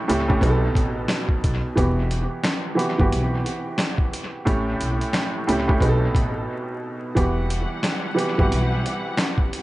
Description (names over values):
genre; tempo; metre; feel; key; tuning
hip hop, boom-bap hip-hop; 89 BPM; 4/4; swing 60% on 16ths; E harmonic minor; A4 = 440 Hz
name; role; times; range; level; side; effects
warm upright piano; accompaniment; 0.0-9.6 s; A2 to A4; -24 LUFS; right 1 dB; cassette tape, high-pass filter, low-pass filter, dub echo
upright bass; bass; 0.1-8.8 s; E1 to C#2; -24 LUFS; equal; none
boom bap sampler-style drum kit; drums; 0.1-9.6 s; hi-hat, kick drum, snare drum; -24 LUFS; equal; dub echo
clear studio string section; sustained chords; 7.2-9.6 s; G3 to F#5; -30 LUFS; left 1 dB; high-pass filter, low-pass filter
room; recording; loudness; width
studio ambience; echo-heavy mix, vinyl crackle, nothing above 10.8 kHz; -20 LUFS; side -17 dB against mid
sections
0.0-7.2 A section; 7.2-9.6 A section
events
break 6.5-7.2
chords
0.4 B7; 1.8 Emadd9; 4.5 A7; 5.8 B7; 7.2 Emadd9